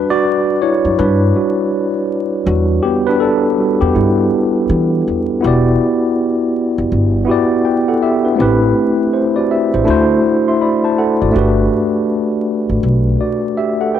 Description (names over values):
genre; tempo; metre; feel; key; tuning
lo-fi hip hop; 81 BPM; 4/4; swing 62% on 16ths; E minor; A4 = 440 Hz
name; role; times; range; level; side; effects
tine electric piano; accompaniment; 0.0-14.0 s; G3 to C6; -13 LUFS; equal; medium stereo tremolo, cassette tape
upright bass; bass; 0.8-13.1 s; E1 to E3; -16 LUFS; equal; none
room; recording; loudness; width
light reverb; vinyl crackle; -12 LUFS; side -10 dB against mid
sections
0.0-5.4 A section; 5.4-14.0 B section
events
tine electric piano solo 0.0-5.4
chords
0.0 Em7; 8.4 Am7; 9.9 D7; 11.4 Gmaj7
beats
0.24 0.98 1.72 | 2.46 3.21 3.95 4.69 | 5.43 6.17 6.91 7.65 | 8.39 9.13 9.87 10.61 | 11.35 12.09 12.84 13.57